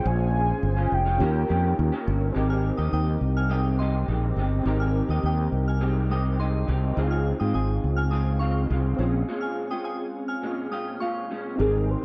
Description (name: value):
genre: indie pop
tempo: 104 BPM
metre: 4/4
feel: straight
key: Ab major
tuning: A4 = 440 Hz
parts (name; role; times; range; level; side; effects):
- warm velvety synth lead; melody; 0.0-2.1, 11.6-12.0 s; Ab4 to Ab5; -30 LUFS; equal; analog chorus, slapback echo
- electric guitar through a small old amp; accompaniment; 0.0-12.0 s; Ab2 to G4; -34 LUFS; equal; ensemble chorus, vibrato effect
- warm analog keys; accompaniment; 0.0-12.0 s; C4 to C5; -33 LUFS; equal; chorus, cassette tape
- fretless electric bass; bass; 0.1-11.9 s; F1 to Ab2; -26 LUFS; equal; none
- soft synth bell; second line; 2.5-11.4 s; Eb5 to F6; -36 LUFS; equal; subtle chorus, slapback echo
room: light reverb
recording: dry, close 1970s-style studio recording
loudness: -25 LUFS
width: mono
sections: 0.0-2.3 A section; 2.3-11.6 B section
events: break 9.3-11.6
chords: 0.0 Bbm7; 1.2 Eb7; 2.3 Abmaj7; 7.0 Dbmaj7; 9.0 Bbm7